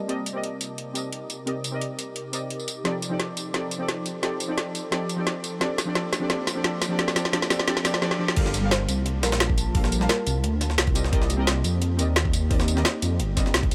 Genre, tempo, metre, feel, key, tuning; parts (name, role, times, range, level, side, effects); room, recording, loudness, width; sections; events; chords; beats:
liquid drum and bass; 174 BPM; 4/4; straight; G minor; A4 = 442 Hz
deep mellow chord stab; accompaniment; 0.0-13.7 s; F3 to A5; -32 LUFS; equal; chorus, delay
ethereal airy pad; sustained chords; 0.0-13.7 s; C3 to D6; -38 LUFS; equal; ensemble chorus, built-in reverb, sidechain pumping
drum and bass drum kit; drums; 0.1-13.7 s; crash cymbal, hi-hat, snare drum, tambourine; -29 LUFS; equal
dark detuned saw bass; bass; 8.4-13.7 s; G1 to F2; -27 LUFS; equal
electronic kick drum; drums; 8.4-13.7 s; -26 LUFS; equal
jungle sampler-style drum kit; drums; 8.4-13.7 s; hi-hat, snare drum; -33 LUFS; equal; high-pass filter on hats, high-pass filter on snare
folk marimba with medium mallets; melody; 8.7-10.4 s; Bb4 to C5; -36 LUFS; equal; dub echo
light reverb; -25 LUFS; mono
0.0-8.4 A section; 8.4-13.7 B section
build-up 0.0-8.4; filter sweep on ambient pad 0.0-8.4; drum fill 2.9-8.0, 8.0-8.4; drop 8.4-13.7
0.0 Cm9; 2.9 F13; 5.4 Bbmaj7; 8.4 Gm9; 11.0 Cm9
| 0.09 0.44 0.78 1.13 | 1.47 1.82 2.16 2.51 | 2.85 3.20 3.54 3.89 | 4.23 4.58 4.92 5.27 | 5.61 5.96 6.30 6.64 | 6.99 7.33 7.68 8.02 | 8.37 8.71 9.06 9.40 | 9.75 10.09 10.44 10.78 | 11.13 11.47 11.82 12.16 | 12.51 12.85 13.20 13.54